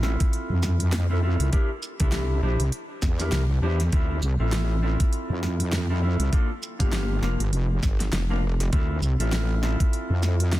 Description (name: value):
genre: glitch hop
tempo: 100 BPM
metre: 4/4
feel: swing 58% on 16ths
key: D minor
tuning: A4 = 443 Hz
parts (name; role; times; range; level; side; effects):
- mellow electric guitar; stabs; 0.0-10.6 s; Bb3 to C5; -31 LUFS; equal; sidechain pumping, digital delay
- wobble bass; bass; 0.0-10.6 s; F1 to F2; -23 LUFS; equal; chorus
- pop drum kit; drums; 0.0-10.6 s; hi-hat, shaker, snare drum; -32 LUFS; right 1 dB; none
- electronic kick drum; drums; 0.2-9.9 s; none; -22 LUFS; equal; none
room: little or no reverb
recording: dense, heavily limited modern master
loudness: -22 LUFS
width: side -16 dB against mid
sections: 0.0-10.6 A section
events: none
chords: 0.0 Dm9 (rootless); 1.5 C9; 3.9 Dm9 (rootless); 6.3 Gm7; 8.7 Dm9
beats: 0.33 0.93 | 1.53 2.13 2.73 3.33 | 3.93 4.53 5.13 5.73 | 6.33 6.93 7.53 8.13 | 8.73 9.33 9.93 10.53